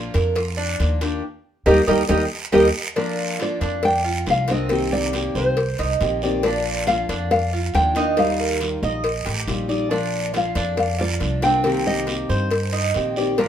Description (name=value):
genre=latin, Cuban son and guajira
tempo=138 BPM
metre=4/4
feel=straight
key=Bb major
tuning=A4 = 438 Hz
part: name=fingerpicked steel-string acoustic guitar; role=accompaniment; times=0.0-13.5 s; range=C3 to G4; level=-25 LUFS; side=left 3 dB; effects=none
part: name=Cuban tres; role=arpeggios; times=0.0-13.5 s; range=C4 to Eb5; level=-25 LUFS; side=right 4 dB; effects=none
part: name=upright bass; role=bass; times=0.0-13.5 s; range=A1 to G2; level=-25 LUFS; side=equal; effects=none
part: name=cowbell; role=percussion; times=0.1-13.5 s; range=none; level=-26 LUFS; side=left 2 dB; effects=none
part: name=guiro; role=percussion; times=0.1-13.5 s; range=none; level=-31 LUFS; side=right 4 dB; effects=none
part: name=nylon-string guitar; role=melody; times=1.7-13.5 s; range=G4 to G5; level=-22 LUFS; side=equal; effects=none
room=moderate studio reverb, RT60 0.7 s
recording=minimal, uncompressed stereo recording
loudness=-18 LUFS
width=side -9 dB against mid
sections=0.0-3.0 A section; 3.0-13.5 B section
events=nylon-string guitar solo 0.0-3.0; band accent 1.2-3.0; drum fill 2.8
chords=0.0 Bb; 1.2 Eb; 3.0 Bb; 4.7 Cm7; 6.4 Bb; 8.2 Ebadd9; 9.9 Bb; 11.6 Cm7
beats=0.36 0.79 | 1.23 1.66 2.10 2.53 | 2.97 3.40 3.84 4.27 | 4.71 5.14 5.57 6.01 | 6.44 6.88 7.31 7.74 | 8.18 8.61 9.04 9.48 | 9.91 10.35 10.78 11.21 | 11.65 12.08 12.51 12.95 | 13.38